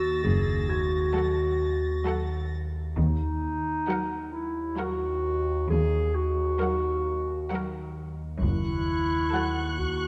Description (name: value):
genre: cinematic, suspense film score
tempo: 66 BPM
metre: 3/4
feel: straight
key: Eb phrygian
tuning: A4 = 440 Hz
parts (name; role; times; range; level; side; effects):
- muted chamber violin section; melody; 0.0-10.0 s; Gb5; -44 LUFS; equal; none
- dark clarinet; second line; 0.0-10.1 s; Eb4 to Ab4; -31 LUFS; equal; none
- muted chamber viola section; accompaniment; 0.0-10.0 s; Gb3; -38 LUFS; equal; none
- analog drone; drone; 0.0-10.1 s; Eb2; -34 LUFS; equal; chorus
- muted chamber violin section; texture; 0.0-2.5, 8.4-10.1 s; Db6 to Bb6; -40 LUFS; equal; none
- warm baby grand piano; texture; 0.0-10.1 s; Gb5 to Ab6; -42 LUFS; equal; none
- muted studio cello section; bass; 0.2-9.2 s; Eb2 to Gb2; -34 LUFS; equal; none
- muted studio double bass section; bass; 0.2-9.2 s; Gb1 to Eb2; -32 LUFS; equal; none
- muted chamber violin section; second line; 1.2-10.0 s; A4 to Bb4; -41 LUFS; equal; none
- taiko ensemble; drums; 3.0-10.1 s; none; -37 LUFS; equal; none
room: moderate concert hall reverb, RT60 2.3 s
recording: none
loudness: -28 LUFS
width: mono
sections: 0.0-10.1 A section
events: none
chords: 0.0 Gbm; 3.0 Ebm; 8.4 Gbm